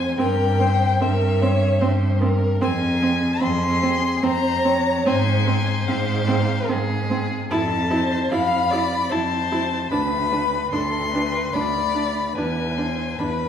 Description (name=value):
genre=classical, slow romantic movement for string quartet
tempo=74 BPM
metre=3/4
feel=rubato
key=F minor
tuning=A4 = 440 Hz
part: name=rich violin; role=melody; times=0.0-13.5 s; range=E5 to C6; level=-25 LUFS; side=left 6 dB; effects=none
part: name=warm violin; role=second line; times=0.0-13.5 s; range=Ab4 to F5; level=-26 LUFS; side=left 1 dB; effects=none
part: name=rich cello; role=bass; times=0.0-13.5 s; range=D2 to Ab2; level=-23 LUFS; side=right 1 dB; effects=none
part: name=warm viola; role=accompaniment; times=0.2-13.3 s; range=C4 to E4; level=-26 LUFS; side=right 2 dB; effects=none
room=wet recital hall reverb, RT60 1.5 s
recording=heard from further back in the room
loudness=-19 LUFS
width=side -8 dB against mid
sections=0.0-13.5 A section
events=none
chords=0.2 C/G; 2.6 Fm; 5.1 Fm/Ab; 7.5 Fmaj7; 9.9 Bm/D; 12.4 E7